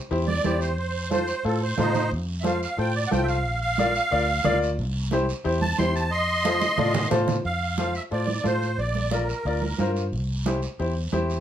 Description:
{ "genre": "latin, cumbia", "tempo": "180 BPM", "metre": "4/4", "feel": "straight", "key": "F major", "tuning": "A4 = 440 Hz", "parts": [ { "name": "bright upright piano", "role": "accompaniment", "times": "0.1-11.4 s", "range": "E4 to D5", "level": "-27 LUFS", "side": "left 2 dB", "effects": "none" }, { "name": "vintage muted fingered electric bass", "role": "bass", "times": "0.1-11.4 s", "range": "Bb1 to A2", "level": "-27 LUFS", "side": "equal", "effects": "none" }, { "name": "guiro", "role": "percussion", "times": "0.1-11.4 s", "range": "none", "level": "-40 LUFS", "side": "right 5 dB", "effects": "none" }, { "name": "musette accordion", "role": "melody", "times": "0.3-9.9 s", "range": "Eb4 to C6", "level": "-26 LUFS", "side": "right 2 dB", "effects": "none" }, { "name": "congas", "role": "percussion", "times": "0.3-11.3 s", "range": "none", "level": "-29 LUFS", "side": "right 5 dB", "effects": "none" } ], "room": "moderate studio reverb, RT60 0.5 s", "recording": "lossy compression artefacts", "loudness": "-22 LUFS", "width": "side -10 dB against mid", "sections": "0.0-7.5 A section; 7.5-11.4 B section", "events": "accordion solo 0.0-7.5; drum fill 6.5-7.5", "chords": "0.0 C; 0.8 F; 3.5 Bb; 4.8 C; 6.1 F; 8.8 Bb; 10.1 C", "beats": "0.12 0.45 | 0.78 1.12 1.45 1.79 | 2.12 2.45 2.79 3.12 | 3.46 3.79 4.12 4.46 | 4.79 5.12 5.45 5.79 | 6.12 6.45 6.79 7.12 | 7.45 7.79 8.12 8.46 | 8.79 9.12 9.46 9.79 | 10.13 10.46 10.80 11.13" }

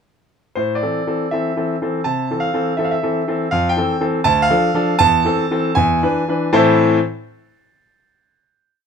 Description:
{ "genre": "classical-period piano sonatina", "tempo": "80 BPM", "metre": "2/4", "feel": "uneven beats", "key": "A minor", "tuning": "A4 = 440 Hz", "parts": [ { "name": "bright concert grand piano", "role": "solo", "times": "0.6-7.0 s", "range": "D2 to A5", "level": "-15 LUFS", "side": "equal", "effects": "none" } ], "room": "little or no reverb", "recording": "close, detailed microphones", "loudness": "-15 LUFS", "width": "side -6 dB against mid", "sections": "0.6-6.6 A section; 6.6-8.1 final chord", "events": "none", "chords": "0.6 Am; 2.1 Am/C; 3.5 Fmaj7; 4.3 Dm; 5.0 Am/E; 5.8 E7; 6.6 Am", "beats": "| 0.58 1.32 | 2.06 2.79 | 3.52 4.26 | 5.01 5.78 | 6.56" }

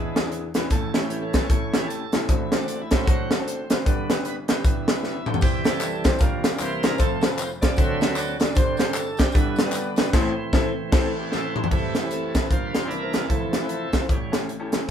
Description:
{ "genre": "uptempo gospel", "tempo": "152 BPM", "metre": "4/4", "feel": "swing 60% on 8ths", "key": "C major", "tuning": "A4 = 442 Hz", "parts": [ { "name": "clear baby grand piano", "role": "accompaniment", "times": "0.0-14.9 s", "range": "F1 to D5", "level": "-29 LUFS", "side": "left 2 dB", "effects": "none" }, { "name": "bright tonewheel organ", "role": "sustained chords", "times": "0.0-14.4 s", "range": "F2 to E5", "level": "-29 LUFS", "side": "right 2 dB", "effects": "slow rotary speaker, overdrive" }, { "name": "crisp fusion drum kit", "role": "drums", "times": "0.2-14.9 s", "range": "crash cymbal, hi-hat, kick drum, snare drum, splash cymbal, toms", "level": "-22 LUFS", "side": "equal", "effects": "none" }, { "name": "tambourine and handclaps", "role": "percussion", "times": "5.4-10.0 s", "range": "none", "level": "-35 LUFS", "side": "left 4 dB", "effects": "none" } ], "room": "moderate studio reverb, RT60 0.6 s", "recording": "band playing live in one room", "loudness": "-20 LUFS", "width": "side -9 dB against mid", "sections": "0.0-11.7 A section; 11.7-14.9 B section", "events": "tonewheel organ solo 0.0-11.7, 11.7-14.9; drum fill 5.0-5.4, 11.3-11.7; band accent 10.1-11.7", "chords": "0.0 E7; 0.7 A; 2.3 D7/A; 3.9 G; 5.4 C; 6.2 Gm7; 6.6 C9; 7.0 F; 7.8 D7; 8.6 Gsus4; 9.4 G; 10.1 Am; 11.7 C6; 12.5 Gm7; 12.9 C9; 13.3 Fmaj7; 14.1 A7", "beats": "0.31 | 0.71 1.10 1.50 1.89 | 2.28 2.68 3.07 3.46 | 3.86 4.25 4.64 5.04 | 5.43 5.82 6.21 6.61 | 7.00 7.39 7.79 8.18 | 8.57 8.96 9.36 9.75 | 10.14 10.54 10.93 11.32 | 11.72 12.11 12.51 12.90 | 13.30 13.70 14.09 14.49 | 14.89" }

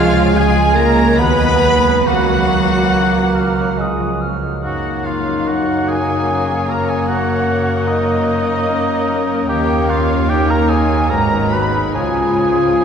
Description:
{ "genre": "classical, slow romantic movement for symphony orchestra", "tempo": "68-77 BPM", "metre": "3/4", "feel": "rubato", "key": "F# major", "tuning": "A4 = 439 Hz", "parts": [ { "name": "rich chamber violin section", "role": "melody", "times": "0.0-12.8 s", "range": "B4 to B5", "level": "-26 LUFS", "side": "left 3 dB", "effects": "none" }, { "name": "concert flute", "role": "second line", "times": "0.0-12.8 s", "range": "D#5 to G#6", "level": "-25 LUFS", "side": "left 2 dB", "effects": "none" }, { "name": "dark clarinet", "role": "second line", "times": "0.0-12.8 s", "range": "E#4 to C#5", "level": "-27 LUFS", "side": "equal", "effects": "none" }, { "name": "mellow oboe", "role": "second line", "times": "0.0-12.8 s", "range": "D#4 to B5", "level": "-21 LUFS", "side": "right 1 dB", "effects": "none" }, { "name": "rich chamber violin section", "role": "second line", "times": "0.0-12.8 s", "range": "E#4 to B5", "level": "-24 LUFS", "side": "equal", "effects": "none" }, { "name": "clear bassoon", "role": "accompaniment", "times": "0.0-12.8 s", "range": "E#3 to B3", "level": "-24 LUFS", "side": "equal", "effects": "none" }, { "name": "clear chamber viola section", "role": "accompaniment", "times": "0.0-12.8 s", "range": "G#3 to B4", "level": "-24 LUFS", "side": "equal", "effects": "none" }, { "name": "concert harp", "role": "arpeggios", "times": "0.0-12.8 s", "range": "F#2 to A#5", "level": "-26 LUFS", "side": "left 4 dB", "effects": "none" }, { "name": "rich chamber double bass section", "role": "bass", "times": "0.0-12.8 s", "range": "F#1 to D#2", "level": "-21 LUFS", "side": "right 2 dB", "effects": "none" }, { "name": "rich symphonic cello section", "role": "bass", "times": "0.0-12.8 s", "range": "D#2 to B3", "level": "-21 LUFS", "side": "right 3 dB", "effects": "none" }, { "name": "dark French horn section", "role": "sustained chords", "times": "1.2-12.8 s", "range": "G#3 to F#4", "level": "-22 LUFS", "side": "left 2 dB", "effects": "none" } ], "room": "wet cathedral reverb, RT60 5.0 s", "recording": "recorded in a church or concert hall", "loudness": "-13 LUFS", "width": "side -7 dB against mid", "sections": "0.0-4.7 A section; 4.7-12.8 B section", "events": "none", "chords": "0.0 C#; 1.2 B/D#; 2.1 F#/C#; 3.8 C#; 4.7 F#; 9.5 D#5; 11.1 G#m7; 12.0 C#", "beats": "0.37 1.20 | 2.08 2.95 3.80 | 4.65 5.48 6.29 | 7.09 7.88 8.69 | 9.49 10.30 11.12 | 11.96 12.83" }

